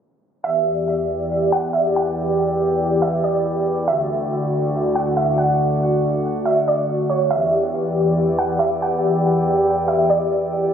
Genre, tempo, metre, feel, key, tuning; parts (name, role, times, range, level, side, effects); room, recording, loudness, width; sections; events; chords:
hip hop; 140 BPM; 4/4; half-time; E dorian; A4 = 441 Hz
warbly dusty pluck; melody; 0.4-10.3 s; C#5 to F#5; -22 LUFS; right 2 dB; chorus, tape echo
hollow soft pad; sustained chords; 0.5-10.7 s; D2 to D5; -19 LUFS; left 1 dB; chorus
drifting glass-harmonics texture; texture; 1.1-10.7 s; D4 to C#6; -29 LUFS; equal; chorus, built-in reverb
moderate huge ambient reverb, RT60 6.5 s; recorded on a phone in the room, studio reverb, compression, low-pass filter; -17 LUFS; side -8 dB against mid
0.5-10.7 A section
0.5 Em7; 3.9 Dmaj7; 7.3 Em7